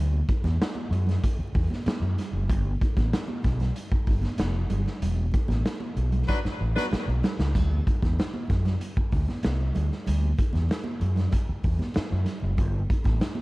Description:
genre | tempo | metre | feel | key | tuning
funk | 95 BPM | 4/4 | straight | unclear | A4 = 440 Hz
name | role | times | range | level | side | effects
overdriven fingered electric bass | bass | 0.0-13.2 s | E1 to F#2 | -25 LUFS | equal | none
congas | percussion | 0.1-13.4 s | none | -35 LUFS | right 3 dB | none
raw garage drum kit | drums | 0.3-13.4 s | hi-hat, kick drum, snare drum, splash cymbal | -27 LUFS | equal | none
clear horn section | second line | 6.3-6.9 s | F#3 to B4 | -32 LUFS | left 2 dB | analog delay
room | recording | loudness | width
studio reverb | dark, warm production, vinyl crackle | -23 LUFS | side -21 dB against mid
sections
0.0-13.4 A section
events
band accent 5.0-7.5; drum fill 6.3-7.5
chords
0.0 Dadd9; 2.5 G7; 5.0 Esus4; 7.5 D9; 12.6 Gsus2

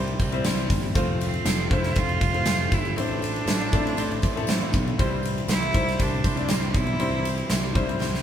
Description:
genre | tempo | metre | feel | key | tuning
piano-driven pop | 119 BPM | 4/4 | straight | C major | A4 = 440 Hz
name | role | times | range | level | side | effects
bright cello | melody | 0.0-7.5 s | G3 to F4 | -29 LUFS | right 3 dB | none
clear baby grand piano | accompaniment | 0.0-8.2 s | A2 to D5 | -30 LUFS | left 4 dB | none
direct-recorded clean electric guitar | riff | 0.0-8.2 s | A2 to C5 | -33 LUFS | right 4 dB | none
picked electric bass | bass | 0.0-8.2 s | F1 to C2 | -28 LUFS | equal | none
huge arena drum kit | drums | 0.1-8.2 s | hi-hat, kick drum, ride cymbal, snare drum | -25 LUFS | equal | none
tambourine | percussion | 0.2-8.1 s | none | -41 LUFS | left 5 dB | none
warm studio string section | sustained chords | 1.0-8.2 s | G4 to C6 | -42 LUFS | left 1 dB | none
room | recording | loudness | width
moderate large studio reverb, RT60 1.4 s | band playing live in one room | -21 LUFS | side -9 dB against mid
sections
0.0-8.2 A section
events
drum fill 8.0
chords
0.0 C; 1.0 F; 3.0 Am; 5.0 C

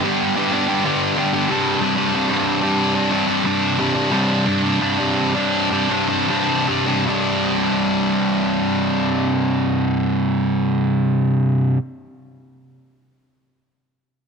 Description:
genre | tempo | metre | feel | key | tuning
rock | 75-94 BPM | 4/4 | straight | unclear | A4 = 439 Hz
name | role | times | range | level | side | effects
overdriven electric guitar | solo | 0.0-11.8 s | C2 to G4 | -17 LUFS | equal | none
room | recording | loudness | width
light reverb, digital ambience | none | -16 LUFS | side -5 dB against mid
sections
0.0-7.1 A section; 7.1-10.3 B section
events
slowing down 1.5-7.1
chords
0.0 G; 1.5 Csus2

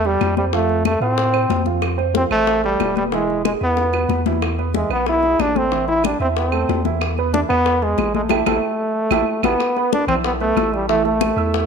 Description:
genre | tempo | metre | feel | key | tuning
latin, salsa | 185 BPM | 4/4 | straight | A minor | A4 = 440 Hz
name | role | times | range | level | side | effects
bright trombone | melody | 0.0-11.7 s | G3 to E4 | -19 LUFS | equal | none
punchy sub bass | bass | 0.0-11.7 s | E1 to A2 | -24 LUFS | equal | none
bongos | percussion | 0.0-11.7 s | none | -27 LUFS | left 11 dB | none
congas | percussion | 0.0-11.7 s | none | -25 LUFS | left 12 dB | none
warm upright piano | accompaniment | 0.1-11.6 s | E3 to E6 | -24 LUFS | right 11 dB | none
claves | percussion | 0.2-11.4 s | none | -29 LUFS | right 14 dB | none
room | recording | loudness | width
moderate echo chamber reverb, RT60 1.6 s | 1960s-style stereo with parts hard left and right | -16 LUFS | side -6 dB against mid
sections
0.0-9.6 A section; 9.6-11.7 B section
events
drum fill 3.8-4.4, 8.3-9.6; band accent 8.3-9.6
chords
0.0 Am7 (rootless); 0.5 F; 1.8 Fmaj9#11; 3.1 E; 5.7 Am7; 7.0 E; 8.3 A5; 9.6 E5; 10.9 A5

